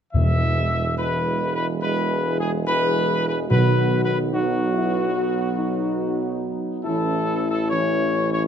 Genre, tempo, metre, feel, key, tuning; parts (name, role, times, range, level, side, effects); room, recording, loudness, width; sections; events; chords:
classical; 71 BPM; 4/4; straight; E major; A4 = 440 Hz
mellow trumpet section; melody; 0.1-8.4 s; F#4 to E5; -24 LUFS; left 1 dB
mellow trombone section; sustained chords; 0.1-8.5 s; D#3 to C#4; -28 LUFS; right 3 dB
clear tuba; bass; 0.1-8.5 s; E1 to B1; -27 LUFS; right 5 dB
timpani; percussion; 0.1-4.7 s; E2 to B2; -21 LUFS; right 1 dB
mellow French horn section; sustained chords; 1.8-8.5 s; D#4 to G#4; -26 LUFS; left 8 dB
moderate recital hall reverb, RT60 1.4 s; close, detailed microphones; -20 LUFS; side -8 dB against mid
0.1-8.5 A section
0.1 E; 3.5 B; 6.9 A